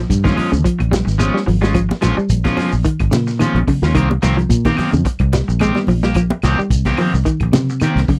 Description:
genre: afrobeat.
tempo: 109 BPM.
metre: 4/4.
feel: swing 54% on 16ths.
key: Bb dorian.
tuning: A4 = 442 Hz.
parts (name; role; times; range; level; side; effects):
clean electric guitar; arpeggios; 0.0-8.2 s; Db3 to Ab3; -22 LUFS; equal; vibrato effect.
fingered electric bass; bass; 0.0-8.1 s; Ab1 to C3; -19 LUFS; equal; none.
crunchy breakbeat drum kit; drums; 0.1-8.2 s; hi-hat, kick drum, snare drum; -24 LUFS; equal; none.
congas; percussion; 0.1-8.2 s; none; -25 LUFS; equal; none.
shekere; percussion; 0.1-8.2 s; none; -27 LUFS; equal; none.
electric guitar at the edge of break-up; stabs; 0.2-8.1 s; Eb3 to G4; -23 LUFS; equal; lush chorus.
claves; percussion; 0.4-8.0 s; none; -34 LUFS; equal; none.
room: little or no reverb.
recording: dry, close 1970s-style studio recording.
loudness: -16 LUFS.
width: mono.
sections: 0.0-8.2 A section.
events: none.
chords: 0.0 Bbm7; 4.0 Cm7.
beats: 0.10 0.65 1.20 | 1.75 2.30 2.85 3.40 | 3.95 4.50 5.05 5.60 | 6.15 6.71 7.26 7.81.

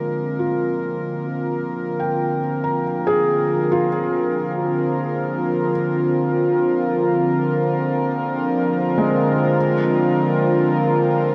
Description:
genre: ambient.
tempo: free time.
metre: none.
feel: none.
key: Bb mixolydian.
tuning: A4 = 443 Hz.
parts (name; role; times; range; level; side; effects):
warm analog pad; sustained chords; 0.0-11.3 s; D3 to Bb4; -22 LUFS; equal; lush chorus.
felt-muted upright piano; arpeggios; 0.0-9.7 s; Ab3 to Bb5; -27 LUFS; equal; tape echo.
pedal harmonium; drone; 0.0-11.3 s; Bb3; -29 LUFS; equal; none.
room: wet huge ambient reverb, RT60 9.0 s.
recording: worn, warbling old tape, cassette tape, warbly pitch drift.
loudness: -20 LUFS.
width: mono.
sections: 0.0-11.3 A section.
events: none.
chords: 0.0 Bbadd9.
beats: free time.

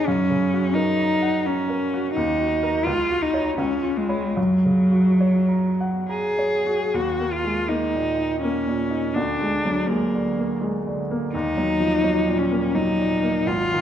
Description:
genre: classical, romantic duo for cello and grand piano.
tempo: 64-87 BPM.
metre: 3/4.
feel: rubato.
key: F# major, Eb minor from 7.0 s.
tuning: A4 = 442 Hz.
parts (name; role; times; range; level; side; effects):
rich cello; melody; 0.0-13.8 s; F#3 to G#4; -21 LUFS; left 1 dB; none.
bright baby grand piano; accompaniment; 0.0-13.8 s; Ab1 to B5; -24 LUFS; right 2 dB; none.
room: wet recital hall reverb, RT60 1.6 s.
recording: dark, warm production.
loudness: -19 LUFS.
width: side -10 dB against mid.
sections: 0.0-7.0 A section; 7.0-13.8 B section.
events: none.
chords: 0.1 F#; 2.2 D#m; 2.9 F#/C#; 3.6 C#7; 4.4 F#; 7.0 Eb5; 9.2 Bb7/D; 11.3 Ebm.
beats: | 0.07 0.76 1.46 | 2.16 2.86 3.58 | 4.37 5.20 6.11 | 6.95 7.70 8.43 | 9.15 9.88 10.61 | 11.34 12.03 12.74 | 13.46.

